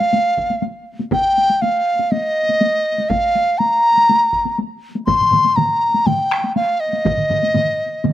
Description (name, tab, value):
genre	japanese traditional, taiko drum ensemble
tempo	121 BPM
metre	4/4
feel	straight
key	F suspended pentatonic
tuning	A4 = 439 Hz
part	mellow large dizi	melody	0.0-8.1 s	Eb5 to C6	-15 LUFS	equal	none
part	taiko ensemble	percussion	0.0-8.1 s	none	-22 LUFS	left 2 dB	none
part	taiko ensemble	percussion	0.4-7.2 s	none	-26 LUFS	right 2 dB	none
part	taiko ensemble	percussion	5.1-8.1 s	none	-26 LUFS	left 3 dB	none
part	taiko ensemble	percussion	5.1-8.1 s	none	-25 LUFS	right 4 dB	none
room	little or no reverb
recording	recorded outdoors, with no room sound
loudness	-14 LUFS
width	side -13 dB against mid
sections	0.0-8.1 A section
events	none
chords	none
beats	0.12 0.62 | 1.12 1.61 2.11 2.61 | 3.10 3.60 4.09 4.59 | 5.08 5.58 6.07 6.57 | 7.06 7.56 8.05